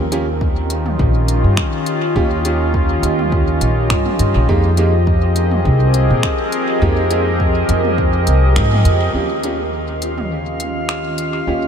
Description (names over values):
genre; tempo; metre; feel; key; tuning
ambient dub; 103 BPM; 4/4; swing 54% on 16ths; Eb mixolydian; A4 = 441 Hz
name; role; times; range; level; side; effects
warbly tape-like pad; sustained chords; 0.0-11.7 s; Eb3 to Eb5; -18 LUFS; equal; chorus, built-in reverb
clear upright piano; stabs; 0.0-11.7 s; Ab3 to G4; -25 LUFS; right 2 dB; dub echo
upright bass; bass; 0.0-11.7 s; Bb1 to Bb2; -16 LUFS; equal; none
organic electronic drum kit; drums; 0.1-11.3 s; finger snaps, hi-hat, toms; -26 LUFS; equal; overdrive, dub echo
electronic kick drum; drums; 0.4-8.7 s; none; -20 LUFS; equal; none
drifting glass-harmonics texture; texture; 9.7-11.7 s; F4 to F5; -26 LUFS; left 1 dB; chorus, built-in reverb
room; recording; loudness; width
moderate huge ambient reverb, RT60 8.2 s; dreamy mix soaked in reverb; -14 LUFS; side -7 dB against mid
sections
0.0-9.1 A section; 9.1-11.7 B section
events
band accent 8.6; filter sweep on ambient pad 9.1-11.7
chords
0.0 Eb9; 4.5 Fm11; 9.1 Eb9